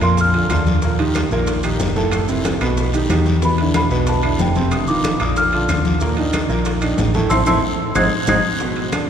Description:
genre	Afro-Cuban jazz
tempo	185 BPM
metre	4/4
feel	straight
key	unclear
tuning	A4 = 439 Hz
part	small celesta	melody	0.0-0.6, 3.4-8.4 s	G5 to Ab6	-22 LUFS	equal	none
part	warm grand piano	accompaniment	0.0-9.1 s	A2 to D5	-20 LUFS	right 2 dB	none
part	hollow-body short-scale fingered electric bass	bass	0.0-8.4 s	F1 to F2	-20 LUFS	equal	none
part	bongos	percussion	0.0-9.1 s	none	-30 LUFS	left 4 dB	none
part	claves	percussion	0.0-9.1 s	none	-33 LUFS	left 1 dB	none
part	congas	percussion	0.0-9.1 s	none	-25 LUFS	left 2 dB	none
part	guiro	percussion	0.0-9.1 s	none	-33 LUFS	left 3 dB	none
part	maracas	percussion	0.0-9.1 s	none	-36 LUFS	right 3 dB	none
part	timbales	percussion	0.0-9.1 s	none	-29 LUFS	right 3 dB	none
room	wet cathedral reverb, RT60 5.1 s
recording	recorded in a church or concert hall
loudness	-15 LUFS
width	side -8 dB against mid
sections	0.0-8.6 A section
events	drum fill 7.3-8.6; band accent 7.3-8.6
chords	0.0 Bb; 0.8 Eb; 2.1 F#m7b5; 2.8 Baug; 3.4 Em7; 4.7 F5; 5.4 Bb; 6.0 Eb5; 7.3 Am; 8.0 Ab7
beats	0.18 0.51 | 0.83 1.15 1.48 1.80 | 2.13 2.45 2.77 3.10 | 3.42 3.75 4.07 4.39 | 4.72 5.04 5.37 5.69 | 6.01 6.33 6.66 6.98 | 7.30 7.63 7.95 8.28 | 8.60 8.92

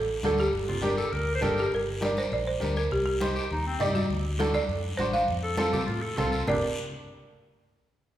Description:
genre	latin, cumbia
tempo	202 BPM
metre	4/4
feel	straight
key	G minor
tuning	A4 = 440 Hz
part	folk marimba with medium hard mallets	melody	0.0-6.6 s	F#4 to F5	-29 LUFS	right 2 dB	none
part	vintage muted fingered electric bass	bass	0.0-6.6 s	G1 to A2	-32 LUFS	equal	none
part	bright upright piano	accompaniment	0.2-6.6 s	C4 to D5	-31 LUFS	right 1 dB	none
part	congas	percussion	0.2-6.5 s	none	-34 LUFS	left 1 dB	none
part	guiro	percussion	0.2-6.5 s	none	-39 LUFS	left 2 dB	none
part	clear clarinet	second line	0.7-6.6 s	C4 to C5	-32 LUFS	left 1 dB	none
room	wet recital hall reverb, RT60 1.5 s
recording	recorded in a church or concert hall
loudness	-25 LUFS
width	side -12 dB against mid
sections	0.0-1.7 A section; 1.7-6.5 B section; 6.5-7.7 C section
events	none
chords	0.0 D; 0.5 Gm; 2.9 Cm; 4.1 D7; 5.3 F; 6.5 Gm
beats	0.24 | 0.54 0.83 1.13 1.43 | 1.72 2.02 2.32 2.61 | 2.91 3.21 3.50 3.80 | 4.10 4.39 4.69 4.99 | 5.28 5.58 5.88 6.17 | 6.47

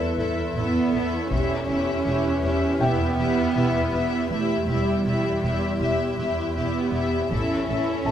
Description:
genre	cinematic, suspense film score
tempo	80 BPM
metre	4/4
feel	straight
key	E dorian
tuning	A4 = 440 Hz
part	warm symphonic violin section	melody	0.0-8.1 s	E5	-31 LUFS	left 5 dB	none
part	dark symphonic viola section	accompaniment	0.0-8.1 s	E4 to A4	-29 LUFS	equal	none
part	pulsing gated texture	sustained chords	0.0-8.1 s	E4 to E5	-31 LUFS	left 1 dB	chorus, built-in reverb
part	dark studio cello section	bass	0.0-8.1 s	G3 to C#4	-26 LUFS	right 3 dB	none
part	swarming drone	drone	0.0-8.1 s	E2	-30 LUFS	equal	built-in reverb
part	felt-muted upright piano	texture	0.0-8.1 s	B4 to A5	-34 LUFS	left 3 dB	none
part	dark chamber double bass section	bass	0.2-8.1 s	E1 to A1	-30 LUFS	right 2 dB	none
part	taiko ensemble	drums	1.3-2.8, 7.3-8.1 s	none	-30 LUFS	left 1 dB	none
room	moderate scoring stage reverb, RT60 1.6 s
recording	none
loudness	-21 LUFS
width	side -10 dB against mid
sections	0.0-8.1 A section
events	none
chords	0.0 A5; 1.3 Em; 7.3 A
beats	0.57 | 1.32 2.07 2.82 3.57 | 4.32 5.07 5.82 6.57 | 7.32 8.07

